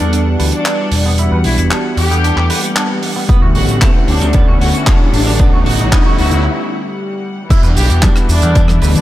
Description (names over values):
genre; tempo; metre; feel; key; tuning
nu-disco, nu disco; 114 BPM; 4/4; straight; E dorian; A4 = 440 Hz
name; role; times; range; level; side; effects
rich studio violin section; melody; 0.0-9.0 s; D4 to G4; -21 LUFS; left 1 dB; analog delay
warm analog pad; accompaniment; 0.0-9.0 s; D3 to F#5; -19 LUFS; equal; chorus, cassette tape, sidechain pumping, slapback echo
warm studio string section; sustained chords; 0.0-9.0 s; E3 to F#5; -25 LUFS; left 2 dB; sidechain pumping
clean electric guitar; riff; 0.0-8.9 s; F#3 to B4; -26 LUFS; right 3 dB; lush chorus, low-pass filter, slapback echo
overdriven picked electric bass; bass; 0.0-8.9 s; E1 to E2; -14 LUFS; equal; none
tight funk drum kit; drums; 0.0-9.0 s; crash cymbal, handclaps, hi-hat, rim click, shaker; -20 LUFS; right 2 dB; none
riser; sound effects; 2.4-6.4 s; none; -25 LUFS; equal; none
electronic kick drum; drums; 3.3-8.7 s; none; -12 LUFS; equal; none
congas; percussion; 8.0-9.0 s; none; -18 LUFS; left 2 dB; none
room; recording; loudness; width
light reverb, small room ambience; none; -10 LUFS; side -14 dB against mid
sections
0.0-7.5 A section; 7.5-9.0 B section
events
build-up 0.0-7.5; filter sweep on clean electric guitar 0.0-7.5; riser 2.4-6.5; break 6.5-7.5; drop 7.5-9.0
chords
0.0 Em9; 3.3 Bm11; 7.5 Em9